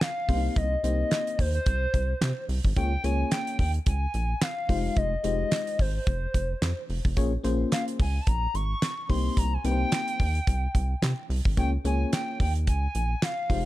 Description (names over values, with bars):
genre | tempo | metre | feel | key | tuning
early-eighties boogie funk | 109 BPM | 4/4 | swing 56% on 16ths | Bb dorian | A4 = 439 Hz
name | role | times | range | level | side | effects
hollow clarinet-like synth lead | melody | 0.0-13.7 s | C5 to Db6 | -31 LUFS | left 1 dB | chorus
damped 70s drum kit | drums | 0.0-13.6 s | handclaps, hi-hat, kick drum, snare drum | -27 LUFS | equal | none
FM electric piano | accompaniment | 0.3-13.7 s | Ab3 to Db5 | -31 LUFS | left 4 dB | chorus
rubbery square bass | bass | 0.3-13.7 s | F1 to C3 | -27 LUFS | equal | none
room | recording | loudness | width
little or no reverb | none | -24 LUFS | side -16 dB against mid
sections
0.0-13.7 A section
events
none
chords
0.3 Cm7; 2.8 Bbm7/Db; 4.7 Fm9; 7.2 Bbm7; 9.1 Cm7; 11.6 Bbm7/Db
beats
0.01 | 0.56 1.11 1.67 2.21 | 2.77 3.32 3.87 4.42 | 4.97 5.52 6.07 6.62 | 7.17 7.72 8.27 8.82 | 9.37 9.92 10.47 11.02 | 11.57 12.12 12.67 13.22